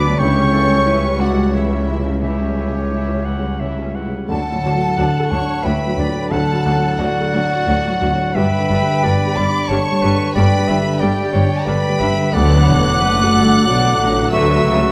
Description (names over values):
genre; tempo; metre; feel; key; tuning
cinematic, emotional film score for orchestra; 89 BPM; 3/4; rubato; D major from 4.3 s; A4 = 440 Hz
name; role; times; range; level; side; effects
rich symphonic violin section; melody; 0.0-14.9 s; C#5 to F#6; -29 LUFS; equal; none
clear clarinet; second line; 0.0-14.9 s; A4 to F#5; -27 LUFS; equal; none
hollow concert flute; second line; 0.0-14.9 s; C#5 to D6; -25 LUFS; equal; none
mellow oboe; second line; 0.0-3.9 s; G4 to B5; -31 LUFS; equal; none
warm chamber violin section; second line; 0.0-14.9 s; C#4 to F#5; -27 LUFS; equal; none
felt-muted upright piano; accompaniment; 0.0-14.9 s; C#2 to C#5; -25 LUFS; equal; none
warm symphonic viola section; accompaniment; 0.0-14.9 s; E3 to F#4; -26 LUFS; equal; none
mellow French horn section; sustained chords; 0.0-14.9 s; C#3 to F#4; -29 LUFS; equal; none
concert harp; arpeggios; 0.0-14.9 s; G2 to C#6; -28 LUFS; equal; none
clear symphonic double bass section; bass; 0.0-14.9 s; E1 to D2; -24 LUFS; equal; none
rich symphonic cello section; bass; 0.0-14.9 s; C#2 to D3; -25 LUFS; equal; none
room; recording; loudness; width
wet scoring stage reverb, RT60 1.6 s; none; -16 LUFS; mono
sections
0.0-4.3 A section; 4.3-14.9 B section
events
none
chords
0.2 C#dim; 4.3 D; 8.4 G; 12.3 D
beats
| 0.20 0.86 1.54 | 2.22 2.91 3.60 | 4.29 4.97 5.64 | 6.31 6.99 7.66 | 8.35 9.03 9.69 | 10.36 11.01 11.66 | 12.34 13.01 13.67 | 14.32